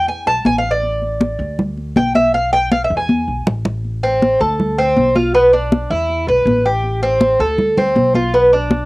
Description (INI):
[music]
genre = latin, Cuban son and guajira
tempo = 160 BPM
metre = 4/4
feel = straight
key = A minor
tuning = A4 = 440 Hz
[part]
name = Cuban tres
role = arpeggios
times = 0.0-8.9 s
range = B3 to A5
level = -14 LUFS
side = equal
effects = cassette tape
[part]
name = upright bass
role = bass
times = 0.0-8.8 s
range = A1 to E2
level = -22 LUFS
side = equal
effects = none
[part]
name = congas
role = percussion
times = 0.1-8.9 s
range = none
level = -17 LUFS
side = left 1 dB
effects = none
[sound]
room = light reverb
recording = home recording on cassette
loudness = -13 LUFS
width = side -22 dB against mid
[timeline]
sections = 0.0-3.8 A section; 3.8-8.9 B section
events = Cuban tres solo 0.0-3.8; drum fill 3.1-3.8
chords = 0.1 E5; 0.8 Asus4; 1.6 Bmadd11; 2.3 G13b9/B; 3.1 E; 3.8 Am; 4.6 Dm7; 5.3 Bmadd11; 6.1 E5; 6.8 Am7; 7.6 Dm7; 8.3 Bm